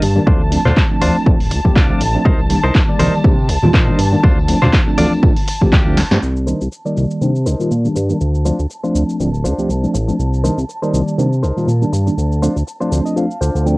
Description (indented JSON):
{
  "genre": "filtered disco house",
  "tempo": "121 BPM",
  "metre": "4/4",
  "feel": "swing 56% on 16ths",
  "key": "C dorian",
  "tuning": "A4 = 441 Hz",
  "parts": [
    { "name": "rich studio violin section", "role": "sustained chords", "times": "0.0-13.8 s", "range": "A5", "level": "-27 LUFS", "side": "equal", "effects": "sidechain pumping, low-pass filter" },
    { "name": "direct-recorded clean electric guitar", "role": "riff", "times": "0.0-13.8 s", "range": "D4 to A5", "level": "-22 LUFS", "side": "left 1 dB", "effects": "sidechain pumping, low-pass filter" },
    { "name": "fat analog bass", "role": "bass", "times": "0.0-13.8 s", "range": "D1 to C3", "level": "-16 LUFS", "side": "equal", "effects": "sidechain pumping, low-pass filter" },
    { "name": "punchy analog drum machine", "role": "drums", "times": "0.0-13.8 s", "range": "cabasa, handclaps, hi-hat, snare drum", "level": "-23 LUFS", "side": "equal", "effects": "sidechain pumping on hats, cassette tape, sidechain pumping on perc" },
    { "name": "tambourine and congas", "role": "percussion", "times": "0.0-6.2 s", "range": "none", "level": "-20 LUFS", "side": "left 1 dB", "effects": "sidechain pumping on perc, low-pass filter on perc" },
    { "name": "tine electric piano", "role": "accompaniment", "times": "0.2-13.7 s", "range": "Eb3 to D5", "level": "-18 LUFS", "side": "equal", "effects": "medium stereo tremolo, phaser, sidechain pumping, low-pass filter" },
    { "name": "electronic kick drum", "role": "drums", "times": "0.3-5.8 s", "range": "none", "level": "-13 LUFS", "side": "equal", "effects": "overdrive, cassette tape" }
  ],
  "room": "light reverb",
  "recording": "home recording on cassette",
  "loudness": "-13 LUFS",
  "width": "side -23 dB against mid",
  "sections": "0.0-6.2 A section; 6.2-13.8 B section",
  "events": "drum fill 6.0; band accent 6.1; clean electric guitar fill 12.7-13.8",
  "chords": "0.3 Dm7; 2.3 Cm7; 4.2 Dm7; 6.2 Cm7; 8.2 Dm7; 10.2 Cm7; 12.2 Dm7"
}